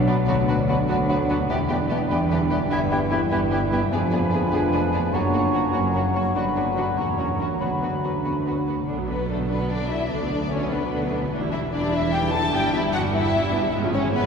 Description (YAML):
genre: classical, dramatic, fast romantic movement for symphony orchestra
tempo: 99 BPM (dotted quarters)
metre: 6/8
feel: straight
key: B minor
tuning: A4 = 440 Hz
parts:
  - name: hollow concert flute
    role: second line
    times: 0.0-8.7 s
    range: F#5 to B5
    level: -34 LUFS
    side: equal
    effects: none
  - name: dark French horn section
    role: sustained chords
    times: 0.0-8.7 s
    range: A#3 to F#4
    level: -32 LUFS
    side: left 2 dB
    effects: none
  - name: dark trombone section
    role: sustained chords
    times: 0.0-8.7 s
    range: B2 to Ab3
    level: -33 LUFS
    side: right 2 dB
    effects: none
  - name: concert harp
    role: arpeggios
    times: 0.0-14.3 s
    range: F2 to D5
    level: -29 LUFS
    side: left 3 dB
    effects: none
  - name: rich studio cello section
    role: bass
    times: 0.0-14.3 s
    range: D2 to B2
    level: -29 LUFS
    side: right 2 dB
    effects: none
  - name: rich symphonic double bass section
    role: bass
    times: 0.0-14.3 s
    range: E1 to D2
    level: -29 LUFS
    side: right 2 dB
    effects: none
  - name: dark symphonic violin section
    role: melody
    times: 0.1-14.3 s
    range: A4 to A5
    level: -31 LUFS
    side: left 3 dB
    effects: none
  - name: warm clarinet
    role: second line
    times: 0.1-8.7 s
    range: C#4 to E4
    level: -32 LUFS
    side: equal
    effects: none
  - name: warm cor anglais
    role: second line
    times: 0.1-8.7 s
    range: B4 to C#5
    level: -32 LUFS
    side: right 3 dB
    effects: none
  - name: warm symphonic violin section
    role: second line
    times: 0.1-14.3 s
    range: A3 to A4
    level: -30 LUFS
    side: left 2 dB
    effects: none
  - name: clear bassoon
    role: accompaniment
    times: 0.1-8.7 s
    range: E3 to F#3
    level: -30 LUFS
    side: left 1 dB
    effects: none
  - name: rich studio viola section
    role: accompaniment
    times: 0.1-14.3 s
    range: D3 to E4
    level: -30 LUFS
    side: right 1 dB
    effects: none
  - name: timpani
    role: percussion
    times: 5.1-5.7 s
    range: none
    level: barely audible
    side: none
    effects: none
room: wet cathedral reverb, RT60 6.6 s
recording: recorded in a church or concert hall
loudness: -20 LUFS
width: side -6 dB against mid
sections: 0.0-8.9 A section; 8.9-14.3 A section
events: none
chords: 0.3 Bm/D; 1.5 Em7; 2.7 Em/G; 3.9 Fdim7; 5.1 F#; 6.3 Gmaj7; 7.0 F#7/E; 7.6 Bm/D; 8.9 Bm; 10.1 Bm/D; 11.3 Em7; 12.5 Em/G; 13.7 C#7/G#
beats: | 0.28 0.89 | 1.50 2.11 | 2.72 3.32 | 3.92 4.52 | 5.13 5.73 | 6.35 6.97 | 7.60 8.24 | 8.88 9.50 | 10.12 10.72 | 11.33 11.93 | 12.54 13.14 | 13.74